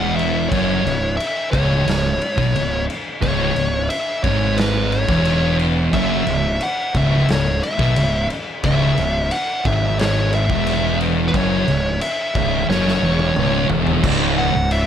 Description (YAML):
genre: stoner and doom metal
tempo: 89 BPM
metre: 4/4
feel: straight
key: C# minor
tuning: A4 = 440 Hz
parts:
  - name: fuzz lead guitar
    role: melody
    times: 0.0-14.9 s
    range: B4 to F#5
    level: -22 LUFS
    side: equal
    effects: distortion, tape echo
  - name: thick fuzz guitar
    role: riff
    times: 0.0-14.8 s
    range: C#2 to B2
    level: -22 LUFS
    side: left 9 dB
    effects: distortion
  - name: thick fuzz guitar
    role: riff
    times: 0.0-14.8 s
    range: C#2 to B2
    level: -21 LUFS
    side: right 8 dB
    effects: distortion
  - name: fuzz fingered electric bass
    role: bass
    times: 0.0-14.9 s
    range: C#1 to B1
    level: -23 LUFS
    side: equal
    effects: overdrive
  - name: raw garage drum kit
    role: drums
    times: 0.2-14.9 s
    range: crash cymbal, kick drum, snare drum, toms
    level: -24 LUFS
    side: left 1 dB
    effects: none
room: little or no reverb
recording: none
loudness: -16 LUFS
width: side -9 dB against mid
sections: 0.0-14.0 A section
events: drum fill 12.7-14.0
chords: 0.0 C#m; 14.0 N.C.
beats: | 0.52 1.19 1.87 2.55 | 3.22 3.90 4.58 5.25 | 5.93 6.61 7.29 7.96 | 8.64 9.31 9.99 10.67 | 11.34 12.02 12.69 13.37 | 14.04 14.71